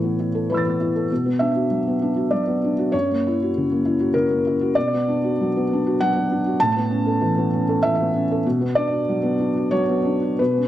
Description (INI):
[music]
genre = neoclassical minimalist piano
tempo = 97 BPM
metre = 3/4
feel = rubato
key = B minor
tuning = A4 = 445 Hz
[part]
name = felt-muted upright piano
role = solo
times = 0.0-10.7 s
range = F#2 to A6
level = -18 LUFS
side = equal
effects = slapback echo
[sound]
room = light reverb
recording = dry, close 1970s-style studio recording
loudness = -18 LUFS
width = side -13 dB against mid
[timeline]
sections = 0.0-10.7 A section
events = none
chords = 0.0 Aadd9; 1.1 Bm; 2.9 F#7; 4.8 Bm; 6.6 Aadd9; 8.4 Bm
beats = 0.51 | 1.10 1.70 2.31 | 2.94 3.55 4.15 | 4.75 5.37 5.99 | 6.59 7.20 7.82 | 8.44 9.06 9.71 | 10.39